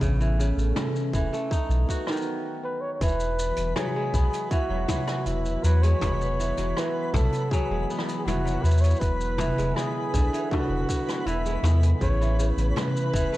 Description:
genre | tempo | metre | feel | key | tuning
folktronica | 80 BPM | 4/4 | straight | E major | A4 = 441 Hz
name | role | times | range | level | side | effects
warbly tape-like pad | sustained chords | 0.0-13.4 s | C#3 to B4 | -35 LUFS | right 1 dB | chorus, built-in reverb, cassette tape
kora | arpeggios | 0.0-13.4 s | C#3 to F#4 | -31 LUFS | equal | cassette tape, analog delay
warm sub bass | bass | 0.0-13.3 s | E1 to E2 | -24 LUFS | equal | none
electronic kick drum | drums | 0.0-13.3 s | none | -27 LUFS | equal | cassette tape
jazz brush drum kit | drums | 0.0-13.4 s | hi-hat, rim click, shaker, toms | -31 LUFS | equal | cassette tape
breathy flugelhorn | melody | 2.6-13.4 s | E4 to C#5 | -30 LUFS | equal | cassette tape
twinkling granular texture | texture | 3.2-13.4 s | B4 to B5 | -39 LUFS | right 2 dB | built-in reverb, cassette tape
room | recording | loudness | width
studio reverb | home recording on cassette | -23 LUFS | side -16 dB against mid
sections
0.0-3.0 A section; 3.0-13.4 B section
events
filter sweep on kora 0.0-3.0; stop 2.3-3.0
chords
0.0 A; 1.5 B; 3.0 Eadd9; 9.0 E7; 12.0 A

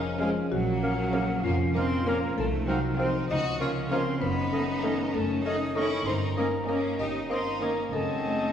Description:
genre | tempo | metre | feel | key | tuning
cinematic, playful, whimsical film cue | 65 BPM (dotted quarters) | 6/8 | straight | unclear | A4 = 440 Hz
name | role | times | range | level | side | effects
buzzing marimba with medium mallets | melody | 0.0-8.5 s | F4 to Eb5 | -34 LUFS | left 2 dB | none
clear chamber violin section | melody | 0.0-8.5 s | Bb3 to G4 | -35 LUFS | left 2 dB | none
mellow French horn section | sustained chords | 0.0-8.5 s | D#3 to Eb4 | -35 LUFS | left 4 dB | none
concert harp | arpeggios | 0.0-8.5 s | F#2 to Eb5 | -35 LUFS | left 1 dB | none
clear chamber double bass section | bass | 0.0-8.5 s | F1 to Db2 | -34 LUFS | right 2 dB | none
rich chamber violin section | second line | 0.2-7.8 s | Ab3 to F4 | -42 LUFS | left 2 dB | none
silver concert flute | second line | 0.2-8.5 s | F5 to D#6 | -36 LUFS | equal | none
warm clarinet | second line | 0.2-8.5 s | B#3 to Eb4 | -38 LUFS | equal | none
warm oboe | second line | 0.2-8.5 s | D#5 to F5 | -38 LUFS | right 1 dB | none
rich studio viola section | accompaniment | 0.2-7.8 s | Db3 to A#3 | -38 LUFS | right 2 dB | none
warm bassoon | accompaniment | 0.2-8.5 s | G#3 to C4 | -35 LUFS | right 1 dB | none
rich studio cello section | bass | 0.2-8.5 s | F3 to Eb4 | -33 LUFS | right 2 dB | none
room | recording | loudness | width
wet scoring stage reverb, RT60 1.7 s | heard from further back in the room | -25 LUFS | side -8 dB against mid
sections
0.0-8.5 A section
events
none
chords
0.0 Db/F; 0.5 Bbm; 2.4 F7/C; 3.3 Bbm/Db; 4.2 D#m7b5/F#; 6.1 D#7/G; 7.9 G#7/F#

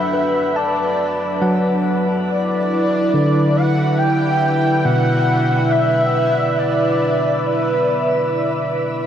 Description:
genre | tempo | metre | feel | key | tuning
ambient | 70 BPM | 4/4 | straight | unclear | A4 = 439 Hz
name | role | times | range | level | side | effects
breathy flute-like synth lead | melody | 0.0-8.3 s | B4 to G5 | -20 LUFS | equal | ensemble chorus, diffuse ambient delay
warm analog pad | sustained chords | 0.0-9.1 s | F#3 to E5 | -20 LUFS | right 1 dB | chorus
tine electric piano | arpeggios | 0.0-9.1 s | B2 to B5 | -19 LUFS | left 1 dB | diffuse ambient delay
room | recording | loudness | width
wet shimmer reverb, RT60 8.1 s | dark, warm production | -15 LUFS | side -9 dB against mid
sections
0.0-9.1 A section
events
none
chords
0.0 Gmaj7 (rootless); 2.3 Em7

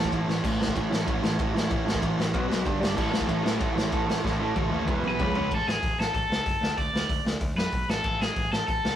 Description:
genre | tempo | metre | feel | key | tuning
punk rock | 189 BPM | 4/4 | straight | A major | A4 = 440 Hz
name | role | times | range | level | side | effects
crunchy overdriven guitar | melody | 0.0-0.1, 5.1-9.0 s | G#4 to D5 | -28 LUFS | left 1 dB | none
overdriven semi-hollow guitar | riff | 0.0-0.3, 3.0-5.5 s | E2 to C#4 | -34 LUFS | equal | none
raw garage guitar | riff | 0.0-5.5 s | A2 to D5 | -29 LUFS | right 4 dB | overdrive
sludgy distorted guitar | riff | 0.0-5.5 s | E2 to C#4 | -32 LUFS | left 3 dB | overdrive
growling picked electric bass | bass | 0.0-8.9 s | E1 to F#2 | -32 LUFS | equal | overdrive
raw garage drum kit | drums | 0.0-8.9 s | crash cymbal, hi-hat, kick drum, ride cymbal, snare drum, toms | -28 LUFS | equal | none
room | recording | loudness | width
moderate stone room reverb, RT60 1.0 s | rough rehearsal-room recording, warm saturation | -24 LUFS | side -10 dB against mid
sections
0.4-5.5 A section; 5.5-9.0 B section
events
drum fill 0.3, 4.2-5.5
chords
0.4 A; 2.3 B5; 2.7 G5; 3.0 A; 4.9 E5; 5.2 C#5; 5.5 N.C.

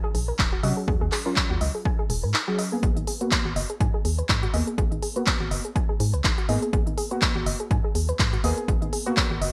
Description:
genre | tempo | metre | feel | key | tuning
deep house | 123 BPM | 4/4 | swing 56% on 16ths | G# minor | A4 = 445 Hz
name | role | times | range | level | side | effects
soft round pluck | arpeggios | 0.0-9.5 s | D#4 to G#5 | -35 LUFS | equal | chorus, sidechain pumping, digital delay
deep mellow chord stab | stabs | 0.0-9.5 s | F#3 to G#4 | -33 LUFS | equal | chorus, sidechain pumping, digital delay
organ-like FM bass | bass | 0.1-9.5 s | D#1 to B#2 | -30 LUFS | equal | sidechain pumping
deep house drum kit | drums | 0.1-9.5 s | handclaps, hi-hat | -29 LUFS | equal | small room ambience, gated reverb
electronic kick drum | drums | 0.4-9.3 s | none | -28 LUFS | equal | overdrive, small room ambience
room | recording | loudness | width
light reverb, digital ambience | bright 1980s-style digital production | -24 LUFS | mono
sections
0.0-9.5 A section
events
none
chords
0.0 D#m9; 2.8 G#m9

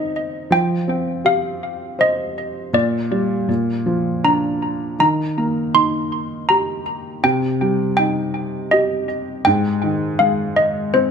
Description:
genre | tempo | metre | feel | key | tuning
children's music, lullaby | 81 BPM | 3/4 | straight | Eb major | A4 = 440 Hz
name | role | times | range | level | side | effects
malleted handbells | melody | 0.0-11.1 s | C5 to C6 | -19 LUFS | equal | tape echo
felt-muted upright piano | accompaniment | 0.0-11.1 s | Ab2 to C5 | -20 LUFS | equal | none
room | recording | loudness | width
light reverb | close, detailed microphones | -17 LUFS | side -6 dB against mid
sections
0.0-11.1 A section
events
none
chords
0.0 Cm/Eb; 0.5 Fsus2; 2.7 Bb6; 3.5 Bb; 5.0 Eb; 7.2 Cm; 9.5 Ab5

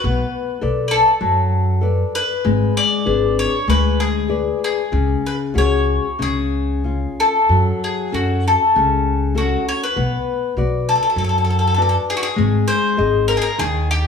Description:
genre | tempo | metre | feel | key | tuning
fado-style ballad | 92-102 BPM | 4/4 | rubato | unclear | A4 = 439 Hz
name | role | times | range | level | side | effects
bowl-back mandolin | melody | 0.0-14.1 s | F#4 to D5 | -19 LUFS | left 2 dB | none
nylon-string guitar | accompaniment | 0.0-14.1 s | C#3 to D#5 | -21 LUFS | left 6 dB | none
upright bass | bass | 0.0-14.1 s | G#1 to F#2 | -20 LUFS | equal | none
room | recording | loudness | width
moderate recital hall reverb, RT60 1.5 s | none | -16 LUFS | side -6 dB against mid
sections
0.0-14.1 A section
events
none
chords
0.0 Bm7; 2.5 G#dim; 4.9 C#sus4; 6.2 C#; 7.5 F#m; 10.0 Bm; 12.4 G#

